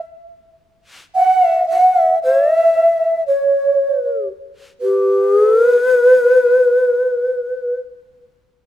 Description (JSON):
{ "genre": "japanese traditional, Japanese chamber music", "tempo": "52-61 BPM", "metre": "4/4", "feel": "rubato", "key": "unclear", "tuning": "A4 = 441 Hz", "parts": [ { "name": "mellow alto ocarina", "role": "second line", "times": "1.1-7.8 s", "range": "B4 to F#5", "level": "-16 LUFS", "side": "right 2 dB", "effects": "none" }, { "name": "breathy mellow long shakuhachi", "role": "melody", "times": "1.2-7.8 s", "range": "B4 to F#5", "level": "-13 LUFS", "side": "left 1 dB", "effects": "none" } ], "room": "light reverb", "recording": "close, detailed microphones", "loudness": "-12 LUFS", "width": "side -12 dB against mid", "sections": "0.0-1.2 A section; 1.2-8.7 B section", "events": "none", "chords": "none" }